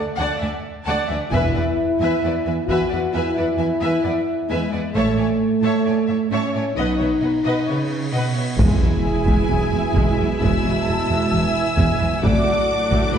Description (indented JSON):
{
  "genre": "cinematic, epic orchestral film score",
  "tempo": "66 BPM",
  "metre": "4/4",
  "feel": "straight",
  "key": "E mixolydian",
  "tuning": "A4 = 442 Hz",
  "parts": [
    { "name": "rich symphonic violin section", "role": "melody", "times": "0.0-13.2 s", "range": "E5 to E6", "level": "-30 LUFS", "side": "left 3 dB", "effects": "none" },
    { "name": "rich symphonic violin section", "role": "second line", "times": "0.0-13.2 s", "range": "C#5 to A5", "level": "-29 LUFS", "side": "left 2 dB", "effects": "none" },
    { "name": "rich symphonic viola section", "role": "accompaniment", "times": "0.0-13.2 s", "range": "F#3 to D5", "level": "-27 LUFS", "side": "right 1 dB", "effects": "none" },
    { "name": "rich studio cello section", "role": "bass", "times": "0.0-13.2 s", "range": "D2 to C#3", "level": "-25 LUFS", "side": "right 2 dB", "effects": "none" },
    { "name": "mellow French horn section", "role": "sustained chords", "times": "1.3-13.2 s", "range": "G#3 to F#4", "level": "-22 LUFS", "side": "equal", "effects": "none" },
    { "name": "rich symphonic double bass section", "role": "bass", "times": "1.3-13.2 s", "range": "E1 to D2", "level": "-26 LUFS", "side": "right 2 dB", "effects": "none" },
    { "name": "taiko ensemble", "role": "drums", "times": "1.3-3.1, 8.6-13.2 s", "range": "none", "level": "-23 LUFS", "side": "equal", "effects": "none" },
    { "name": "cymbal swell and sub drop", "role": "sound effects", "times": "7.7-12.2 s", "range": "none", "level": "-30 LUFS", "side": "equal", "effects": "none" },
    { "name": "clear symphonic string section", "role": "sustained chords", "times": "8.6-13.2 s", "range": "G#3 to E5", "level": "-28 LUFS", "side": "right 1 dB", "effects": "none" },
    { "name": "clear trombone section", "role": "sustained chords", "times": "8.6-13.2 s", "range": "A2 to F#3", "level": "-29 LUFS", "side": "right 2 dB", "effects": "none" },
    { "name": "mellow trumpet section", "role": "stabs", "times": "8.6-13.2 s", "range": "G#4 to E5", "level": "-24 LUFS", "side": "right 2 dB", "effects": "none" },
    { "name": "timpani", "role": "percussion", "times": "8.6-9.9 s", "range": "E2", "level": "-26 LUFS", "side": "equal", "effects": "none" }
  ],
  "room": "wet scoring stage reverb, RT60 1.5 s",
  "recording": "heard from further back in the room, nothing above 10.7 kHz",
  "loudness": "-17 LUFS",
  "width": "side -8 dB against mid",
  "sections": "0.0-8.6 A section; 8.6-13.2 A section",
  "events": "cymbal swell 7.7-8.6; impact 8.6-12.2",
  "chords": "0.0 D; 1.3 E; 5.0 A; 6.8 B; 8.6 E; 12.2 D",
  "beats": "0.41 | 1.32 2.23 3.14 4.05 | 4.96 5.87 6.78 7.69 | 8.60 9.51 10.41 11.32 | 12.23 13.14"
}